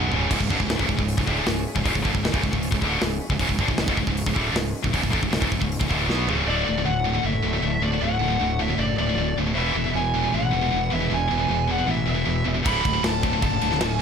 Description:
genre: heavy metal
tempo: 156 BPM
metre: 4/4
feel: straight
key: C# phrygian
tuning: A4 = 440 Hz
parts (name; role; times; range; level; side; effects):
- rich chamber string section; sustained chords; 0.0-14.0 s; C#3 to B4; -36 LUFS; equal; none
- heavy high-gain guitar; riff; 0.0-14.0 s; C#2 to B3; -27 LUFS; right 13 dB; distortion
- high-gain distorted guitar; riff; 0.0-14.0 s; C#2 to B3; -26 LUFS; left 10 dB; distortion
- fuzz fingered electric bass; bass; 0.0-14.0 s; C#1 to B1; -28 LUFS; equal; overdrive
- tight metal drum kit; drums; 0.1-6.4, 12.7-13.9 s; crash cymbal, hi-hat, kick drum, snare drum, toms; -26 LUFS; equal; none
- high-gain lead guitar; melody; 6.5-14.0 s; D5 to B5; -26 LUFS; left 1 dB; distortion, digital delay
room: studio ambience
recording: none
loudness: -20 LUFS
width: side -7 dB against mid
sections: 0.0-6.5 A section; 6.5-14.0 B section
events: drum fill 0.0-0.3, 6.1-6.5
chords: 0.0 C#m; 6.5 D; 9.6 E; 12.7 D

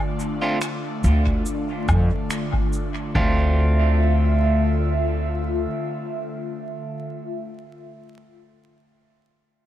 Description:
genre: ambient dub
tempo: 71 BPM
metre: 4/4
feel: swing 53% on 16ths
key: D minor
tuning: A4 = 440 Hz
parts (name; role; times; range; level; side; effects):
- airy breathy pad; sustained chords; 0.0-7.3 s; D3 to E5; -26 LUFS; equal; chorus, phaser
- electronic cabasa, finger snaps and woodblock; drums; 0.2-2.9 s; none; -32 LUFS; equal; dub echo
- electric guitar at the edge of break-up; stabs; 0.4-7.1 s; A3 to F4; -28 LUFS; right 2 dB; dub echo
- upright bass; bass; 1.0-5.6 s; D2 to F2; -19 LUFS; equal; none
- electronic kick drum; drums; 1.3-3.3 s; none; -26 LUFS; equal; none
room: light reverb, digital ambience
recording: vinyl crackle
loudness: -20 LUFS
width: side -12 dB against mid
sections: 0.0-3.2 A section; 3.2-6.5 B section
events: none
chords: 0.0 Dm; 3.2 Dm7

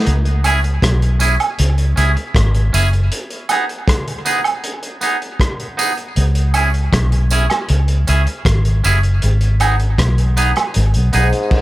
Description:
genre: dub reggae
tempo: 79 BPM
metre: 4/4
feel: straight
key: C# minor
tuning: A4 = 440 Hz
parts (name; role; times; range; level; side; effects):
- vintage muted fingered electric bass; bass; 0.1-11.3 s; F#1 to C#2; -14 LUFS; equal; none
- crunchy breakbeat drum kit; drums; 0.1-11.6 s; crash cymbal, hi-hat, kick drum, rim click; -20 LUFS; equal; none
- twangy electric guitar; accompaniment; 0.4-11.3 s; B3 to G#4; -21 LUFS; right 2 dB; dub echo
- tambourine and woodblock; percussion; 0.4-11.3 s; none; -23 LUFS; right 5 dB; dub echo
- bright trombone; melody; 11.2-11.6 s; G#2; -22 LUFS; left 2 dB; dub echo
room: small room ambience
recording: none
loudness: -13 LUFS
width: side -17 dB against mid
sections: 0.1-11.6 A section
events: break 3.1-6.2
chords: 0.1 C#m; 3.1 G#m; 6.2 C#m; 9.2 G#m

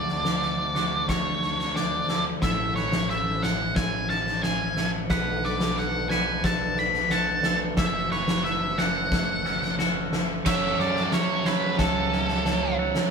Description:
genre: post-rock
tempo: 90 BPM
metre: 4/4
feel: straight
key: F# minor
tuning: A4 = 440 Hz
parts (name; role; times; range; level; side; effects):
- octave-fuzz lead guitar; melody; 0.0-12.7 s; A4 to B5; -27 LUFS; equal; distortion
- pedal harmonium; sustained chords; 0.0-13.1 s; C#3 to F#4; -37 LUFS; left 1 dB; none
- twangy electric guitar; arpeggios; 0.0-13.1 s; F#2 to G#4; -36 LUFS; left 3 dB; none
- twangy electric guitar; arpeggios; 0.0-13.1 s; A4 to C#6; -37 LUFS; right 4 dB; none
- growling picked electric bass; bass; 0.0-12.9 s; F#1 to F#2; -34 LUFS; equal; overdrive
- oversized low-tuned drum kit; drums; 0.1-13.1 s; crash cymbal, kick drum, snare drum; -26 LUFS; equal; none
- fuzz guitar; riff; 10.5-13.1 s; F#3 to A4; -27 LUFS; right 8 dB; distortion
room: wet studio reverb, RT60 0.6 s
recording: band playing live in one room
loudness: -22 LUFS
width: side -6 dB against mid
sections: 0.0-10.5 A section; 10.5-13.1 B section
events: none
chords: 0.0 Dmaj7; 2.4 Amaj7; 5.1 Bm7; 7.8 F#m7

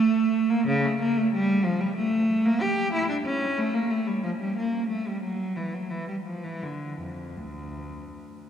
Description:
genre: classical, baroque-style suite movement for unaccompanied cello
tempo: 91 BPM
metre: 3/4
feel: uneven beats, rubato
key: D minor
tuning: A4 = 440 Hz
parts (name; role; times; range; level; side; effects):
- rich cello; solo; 0.0-8.4 s; D2 to G4; -24 LUFS; equal; none
room: wet cathedral reverb, RT60 4.7 s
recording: recorded in a church or concert hall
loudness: -24 LUFS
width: side -8 dB against mid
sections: 0.0-8.5 A section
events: none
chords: none

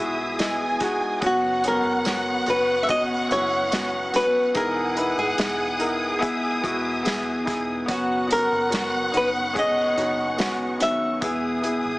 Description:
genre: pop ballad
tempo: 72 BPM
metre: 4/4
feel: straight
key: unclear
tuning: A4 = 440 Hz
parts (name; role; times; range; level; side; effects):
- flamenco guitar; melody; 0.0-12.0 s; E4 to E5; -24 LUFS; equal; none
- warm studio violin section; second line; 0.0-11.2 s; E5 to G#5; -30 LUFS; right 1 dB; none
- warm baby grand piano; accompaniment; 0.0-12.0 s; D#3 to D#5; -27 LUFS; left 1 dB; none
- warm studio string section; sustained chords; 0.0-12.0 s; B3 to D#6; -31 LUFS; equal; none
- picked steel-string acoustic guitar; arpeggios; 0.0-12.0 s; F#2 to G#4; -34 LUFS; equal; none
- vintage muted fingered electric bass; bass; 0.0-12.0 s; E1 to B1; -43 LUFS; equal; none
- unplugged drum kit; drums; 0.4-11.8 s; hi-hat, kick drum, snare drum; -29 LUFS; equal; none
- tambourine; percussion; 0.4-10.6 s; none; -40 LUFS; right 3 dB; none
room: light reverb, studio reverb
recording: heavily compressed radio sound, small speaker sound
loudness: -21 LUFS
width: side -20 dB against mid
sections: 0.0-12.0 A section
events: none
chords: 0.0 Emaj7; 1.2 F#sus4; 4.6 Emaj7; 7.9 F#sus4; 11.2 Emaj7

